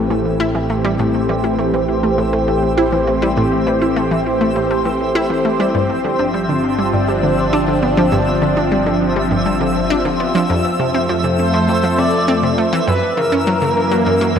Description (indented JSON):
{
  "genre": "ambient, sequencer-driven space music",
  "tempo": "101 BPM",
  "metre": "4/4",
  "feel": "straight",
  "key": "A minor",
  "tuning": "A4 = 441 Hz",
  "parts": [
    { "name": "lush unison pad", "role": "sustained chords", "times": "0.0-14.4 s", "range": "E3 to C#5", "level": "-17 LUFS", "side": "equal", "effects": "chorus, phaser" },
    { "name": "analog pluck", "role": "riff", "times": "0.0-14.4 s", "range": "F2 to E4", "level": "-19 LUFS", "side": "equal", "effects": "chorus, tape echo" },
    { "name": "analog drone", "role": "bass", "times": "0.0-14.4 s", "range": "G1 to F#2", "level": "-25 LUFS", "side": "equal", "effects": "chorus" },
    { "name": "twinkling granular texture", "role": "texture", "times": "0.1-14.4 s", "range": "E5", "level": "-26 LUFS", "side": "equal", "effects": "built-in reverb" },
    { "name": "expressive portamento lead", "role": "melody", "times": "11.4-14.4 s", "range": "A#4 to D5", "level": "-19 LUFS", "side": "equal", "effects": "analog chorus, tape echo" }
  ],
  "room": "wet lush hall reverb, RT60 2.9 s",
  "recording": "dreamy mix soaked in reverb",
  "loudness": "-14 LUFS",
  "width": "side -8 dB against mid",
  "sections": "0.0-14.4 A section",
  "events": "fade-in on synth texture 0.0-14.4",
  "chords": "0.0 Am7; 5.7 G7sus4; 10.5 F; 12.9 F#7"
}